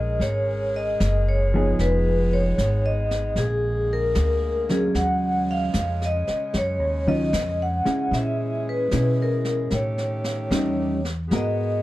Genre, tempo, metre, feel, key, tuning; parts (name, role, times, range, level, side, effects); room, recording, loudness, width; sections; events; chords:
jazz ballad; 76 BPM; 4/4; swing 67% on 8ths; A4 = 438 Hz
vibraphone with medium hard mallets; melody; 0.0-11.8 s; G#4 to F#5; -25 LUFS; equal
warm saxophone section; sustained chords; 0.0-11.8 s; C#3 to A#4; -34 LUFS; left 1 dB
upright bass; bass; 0.0-11.8 s; F1 to B2; -25 LUFS; equal
jazz brush drum kit; drums; 0.2-11.8 s; brushed snare drum, hi-hat, snare drum; -35 LUFS; equal
hollow-body jazz guitar; accompaniment; 1.5-11.8 s; D#3 to A#4; -24 LUFS; equal
little or no reverb; -20 LUFS; side -16 dB against mid
0.0-11.8 A section
0.0 F#maj9; 1.8 Fm7b5; 3.4 A#7b13; 5.0 D#m9; 8.1 A#m7b5; 9.7 A7#11; 11.3 G#m9